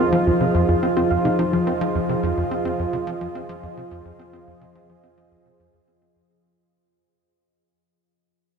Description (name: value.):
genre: ambient, sequencer-driven space music.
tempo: 107 BPM.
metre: 4/4.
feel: straight.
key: F minor.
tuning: A4 = 440 Hz.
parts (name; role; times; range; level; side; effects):
sweeping resonant pad; sustained chords; 0.0-6.3 s; F3 to Eb5; -22 LUFS; right 1 dB; chorus.
warbly dusty pluck; arpeggios; 0.0-1.7 s; F3 to F5; -26 LUFS; equal; chorus, auto-pan, tape echo.
tight sequencer bass; riff; 0.0-6.2 s; F2 to C4; -24 LUFS; equal; lush chorus, tape echo.
room: wet huge ambient reverb, RT60 8.3 s.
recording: dark, warm production.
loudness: -19 LUFS.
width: side -6 dB against mid.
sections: 0.0-6.3 A section.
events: fade-out on analog synth bass 0.0-6.3; fade-out 0.0-6.3.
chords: 0.0 Fm7.